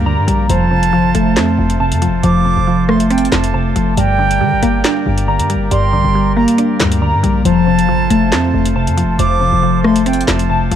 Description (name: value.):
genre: hip hop, drill.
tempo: 138 BPM.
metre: 4/4.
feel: half-time.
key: unclear.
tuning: A4 = 440 Hz.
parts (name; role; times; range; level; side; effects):
mallet-like synth pluck; accompaniment; 0.0-10.8 s; F2 to D4; -17 LUFS; right 1 dB; chorus.
pipe organ, soft reed; sustained chords; 0.0-10.8 s; F4 to Bb5; -25 LUFS; right 3 dB; none.
glassy digital keys; arpeggios; 0.0-10.8 s; F3 to Bb5; -16 LUFS; left 3 dB; chorus, ping-pong delay.
hard-hitting 808-style bass; bass; 0.0-10.8 s; F1 to D3; -18 LUFS; equal; none.
drill drum kit; drums; 0.3-10.8 s; handclaps, hi-hat, rim click, snare drum; -20 LUFS; equal; none.
silver concert flute; second line; 0.5-10.5 s; G5 to D6; -20 LUFS; right 6 dB; ping-pong delay.
room: little or no reverb.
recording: dark, warm production.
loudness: -11 LUFS.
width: side -10 dB against mid.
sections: 0.0-10.8 A section.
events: none.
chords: 0.5 F; 4.0 Gm; 7.5 F.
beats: 0.06 | 0.50 0.93 1.37 1.80 | 2.23 2.67 3.10 3.54 | 3.97 4.41 4.84 5.28 | 5.71 6.15 6.58 7.02 | 7.45 7.89 8.32 8.76 | 9.19 9.63 10.06 10.50.